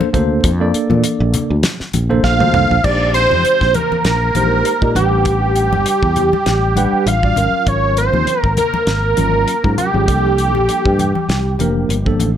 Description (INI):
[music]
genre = electric jazz fusion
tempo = 99 BPM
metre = 4/4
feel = swing 55% on 16ths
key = Bb mixolydian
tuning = A4 = 440 Hz
[part]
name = tine electric piano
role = accompaniment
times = 0.0-12.3 s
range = F3 to F#5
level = -20 LUFS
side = equal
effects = medium stereo tremolo
[part]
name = congas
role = percussion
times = 0.0-12.4 s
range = none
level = -23 LUFS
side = left 5 dB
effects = none
[part]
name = fretless electric bass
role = bass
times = 0.1-12.4 s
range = F1 to Bb2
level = -17 LUFS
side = equal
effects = none
[part]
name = damped 70s drum kit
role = drums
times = 0.1-12.4 s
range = crash cymbal, hi-hat, kick drum, snare drum, toms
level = -20 LUFS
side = equal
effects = none
[part]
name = wide unison lead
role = melody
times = 2.2-12.2 s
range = G4 to F5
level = -15 LUFS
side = right 2 dB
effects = phaser
[sound]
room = light reverb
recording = none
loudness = -12 LUFS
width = side -9 dB against mid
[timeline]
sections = 0.0-2.8 A section; 2.8-12.4 B section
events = drum fill 2.2-2.8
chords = 0.0 Bbmaj9; 2.8 Bb13sus4; 5.0 A13sus4; 7.4 Ab13sus4; 10.1 C13sus4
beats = | 0.44 1.04 1.64 2.24 | 2.85 3.45 4.05 4.65 | 5.26 5.86 6.46 7.07 | 7.67 8.27 8.88 9.48 | 10.09 10.69 11.29 11.90